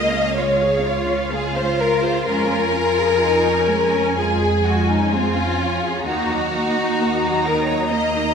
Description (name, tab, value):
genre	classical, slow romantic movement for string orchestra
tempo	64 BPM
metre	4/4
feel	rubato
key	Db major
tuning	A4 = 439 Hz
part	rich symphonic violin section	melody	0.0-8.3 s	F5 to Bb5	-26 LUFS	left 3 dB	none
part	warm symphonic violin section	second line	0.0-8.3 s	Eb4 to Eb5	-20 LUFS	left 2 dB	none
part	rich symphonic viola section	accompaniment	0.0-8.3 s	Eb3 to Ab4	-25 LUFS	right 1 dB	none
part	clear symphonic cello section	bass	0.0-8.3 s	Ab3 to F4	-25 LUFS	right 2 dB	none
part	rich studio double bass section	bass	0.0-8.3 s	Db2 to F2	-25 LUFS	right 4 dB	none
room	wet scoring stage reverb, RT60 2.0 s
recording	minimal, uncompressed stereo recording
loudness	-17 LUFS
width	side -6 dB against mid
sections	0.0-8.3 A section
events	none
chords	0.0 Db; 2.3 Db/F; 6.1 Ebm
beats	0.37 1.32 | 2.27 3.21 4.17 5.12 | 6.06 7.00 7.91